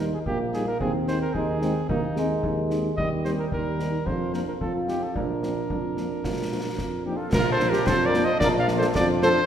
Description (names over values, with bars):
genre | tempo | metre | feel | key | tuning
military-style march for wind band | 110 BPM | 2/4 | straight | Bb major | A4 = 443 Hz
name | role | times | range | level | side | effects
warm cornet | melody | 0.0-9.5 s | Eb4 to F5 | -28 LUFS | right 1 dB | none
clear euphonium | second line | 0.0-7.0 s | F3 to F4 | -30 LUFS | right 2 dB | none
dark French horn section | accompaniment | 0.0-9.3 s | F3 to Eb4 | -33 LUFS | left 3 dB | none
warm tuba | bass | 0.0-9.4 s | Bb1 to F2 | -27 LUFS | right 1 dB | none
concert bass drum, concert snare drum and clash cymbals | drums | 0.3-9.4 s | none | -30 LUFS | equal | none
flute section | second line | 7.1-9.3 s | Eb4 to D5 | -28 LUFS | left 2 dB | none
warm trombone section | sustained chords | 7.3-9.5 s | F3 to D4 | -30 LUFS | right 2 dB | none
room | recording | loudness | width
wet scoring stage reverb, RT60 1.9 s | heard from further back in the room | -22 LUFS | side -9 dB against mid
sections
0.0-7.3 A section; 7.3-9.5 B section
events
none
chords
0.0 Eb; 0.8 Ab/Eb; 3.0 Cm7/Eb; 4.1 Bb/F; 4.6 F7; 5.2 Bb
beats
0.26 | 0.81 1.35 | 1.89 2.44 | 2.98 3.52 | 4.07 4.61 | 5.16 5.70 | 6.24 6.79 | 7.33 7.87 | 8.41 8.96